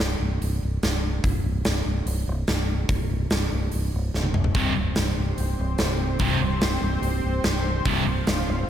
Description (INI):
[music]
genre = hard rock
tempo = 145 BPM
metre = 4/4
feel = straight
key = unclear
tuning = A4 = 440 Hz
[part]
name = fingered electric bass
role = bass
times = 0.0-8.7 s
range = C1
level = -25 LUFS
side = equal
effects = none
[part]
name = big rock drum kit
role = drums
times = 0.0-8.4 s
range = hi-hat, kick drum, snare drum, toms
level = -26 LUFS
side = equal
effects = none
[part]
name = sludgy distorted guitar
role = riff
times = 4.5-8.0 s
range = C2 to C3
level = -30 LUFS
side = left 7 dB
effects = overdrive, slapback echo
[part]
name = analog string pad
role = sustained chords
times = 4.6-8.7 s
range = C4 to C5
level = -30 LUFS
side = equal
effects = ensemble chorus
[part]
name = scooped high-gain guitar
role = riff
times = 4.6-8.0 s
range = C2 to C3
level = -30 LUFS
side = right 8 dB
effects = distortion, slapback echo
[sound]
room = moderate scoring stage reverb, RT60 2.0 s, small room ambience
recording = big arena sound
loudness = -22 LUFS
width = side -10 dB against mid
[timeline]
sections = 0.0-8.7 A section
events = drum fill 4.1-4.6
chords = 0.0 C5